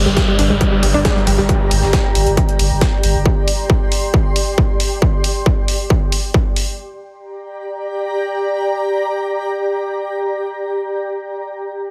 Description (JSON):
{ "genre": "driving peak-time techno", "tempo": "136 BPM", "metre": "4/4", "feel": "straight", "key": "G minor", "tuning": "A4 = 443 Hz", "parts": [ { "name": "warm sub bass", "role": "bass", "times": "0.0-3.3 s", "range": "G1", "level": "-21 LUFS", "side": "equal", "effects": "overdrive, sidechain pumping, low-pass filter" }, { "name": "metallic inharmonic drone", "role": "drone", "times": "0.0-1.5 s", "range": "G2 to G3", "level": "-26 LUFS", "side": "equal", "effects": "chorus, built-in reverb, sidechain pumping" }, { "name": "downlifter", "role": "sound effects", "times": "0.0-3.3 s", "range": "none", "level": "-28 LUFS", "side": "equal", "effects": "none" }, { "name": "granular cloud pad", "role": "texture", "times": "0.0-11.1 s", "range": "G4 to C6", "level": "-24 LUFS", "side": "equal", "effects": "built-in reverb, sidechain pumping" }, { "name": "analog pluck", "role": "riff", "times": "0.1-1.4 s", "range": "G3 to D4", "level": "-22 LUFS", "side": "equal", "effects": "chorus, tube saturation, vintage 12-bit sampler grit, sidechain pumping, digital delay" }, { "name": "breakbeat sampler-style drum kit", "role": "drums", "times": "0.1-3.1 s", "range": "hi-hat, snare drum", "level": "-29 LUFS", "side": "equal", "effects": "high-pass filter on snare, high-pass filter on hats, high-pass filter on room" }, { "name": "electronic kick drum", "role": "drums", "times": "0.2-6.4 s", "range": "none", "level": "-18 LUFS", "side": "equal", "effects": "distortion" }, { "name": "electronic hi-hat", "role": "drums", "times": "0.4-6.7 s", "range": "none", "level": "-25 LUFS", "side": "equal", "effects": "none" } ], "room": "light reverb", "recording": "heavily compressed radio sound, multiband compression", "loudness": "-17 LUFS", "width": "mono", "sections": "0.0-6.8 A section; 6.8-10.3 B section", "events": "none", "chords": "0.0 Gm" }